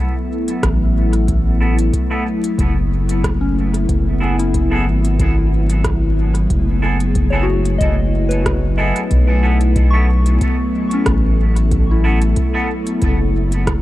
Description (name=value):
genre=ambient dub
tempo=92 BPM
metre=4/4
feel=swing 54% on 16ths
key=unclear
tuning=A4 = 439 Hz
part: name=soft additive organ-like pad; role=sustained chords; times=0.0-13.8 s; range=F#3 to A4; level=-21 LUFS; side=left 1 dB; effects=ensemble chorus, built-in reverb
part: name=organic electronic drum kit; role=drums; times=0.5-13.8 s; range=hi-hat, rim click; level=-25 LUFS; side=right 1 dB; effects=dub echo
part: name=round analog bass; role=bass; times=0.6-13.8 s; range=F#1 to B1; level=-16 LUFS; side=equal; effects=none
part: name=electronic kick drum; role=drums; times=0.6-13.8 s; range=none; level=-21 LUFS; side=equal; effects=none
part: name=clean electric guitar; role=stabs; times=1.6-12.7 s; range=B3 to A4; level=-26 LUFS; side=right 1 dB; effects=low-pass filter, dub echo
part: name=soft synth bell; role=arpeggios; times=3.4-13.8 s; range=C#4 to C#6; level=-25 LUFS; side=left 3 dB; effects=chorus, phaser, dub echo
room=light reverb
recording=vinyl crackle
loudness=-14 LUFS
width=side -15 dB against mid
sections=0.0-13.8 A section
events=none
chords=0.0 B7sus4; 3.9 F#m11; 9.1 B7sus4